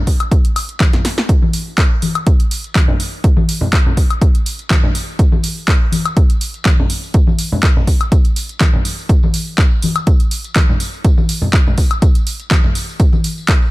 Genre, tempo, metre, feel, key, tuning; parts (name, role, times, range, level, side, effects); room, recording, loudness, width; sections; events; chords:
house; 123 BPM; 4/4; swing 54% on 16ths
electronic kick drum; drums; 0.1-13.6 s; -12 LUFS; equal
punchy analog drum machine; drums; 0.1-13.6 s; handclaps, hi-hat, snare drum, woodblock; -20 LUFS; equal; sidechain pumping on hats, sidechain pumping on perc
tambourine and congas; percussion; 0.1-13.7 s; -21 LUFS; left 2 dB; sidechain pumping on perc, low-pass filter on perc
little or no reverb; -12 LUFS; side -20 dB against mid
0.0-13.7 A section
filter sweep on drum 0.0-13.7; drum fill 0.9-1.3